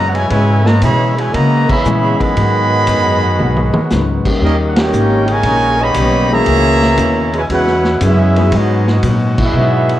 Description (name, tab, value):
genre	jazz, big band swing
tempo	117 BPM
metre	4/4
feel	swing 69% on 8ths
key	G# minor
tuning	A4 = 440 Hz
part	warm trumpet section	melody	0.0-10.0 s	B3 to B5	-16 LUFS	right 1 dB	none
part	bright trombone section	second line	0.0-10.0 s	A#2 to G4	-18 LUFS	right 2 dB	none
part	hollow-body jazz guitar	accompaniment	0.0-9.9 s	G#2 to G#4	-22 LUFS	left 4 dB	none
part	brilliant trombone section	sustained chords	0.0-10.0 s	C#3 to F#4	-25 LUFS	left 2 dB	none
part	upright bass	bass	0.0-10.0 s	G#1 to C#3	-15 LUFS	equal	none
part	vintage drum kit	drums	0.1-10.0 s	crash cymbal, hi-hat, kick drum, ride cymbal, snare drum, toms	-21 LUFS	equal	none
part	warm concert grand piano	accompaniment	1.8-9.0 s	D#3 to G#4	-20 LUFS	left 4 dB	none
room	moderate large studio reverb, RT60 0.8 s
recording	worn, warbling old tape, cassette tape, warbly pitch drift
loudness	-10 LUFS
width	side -13 dB against mid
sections	0.0-10.0 A section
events	band accent 1.6, 4.7, 9.3; drum fill 3.4-3.9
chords	0.0 C#m7; 2.4 G#m7; 4.4 D#7; 6.5 C#m7; 8.5 G#m7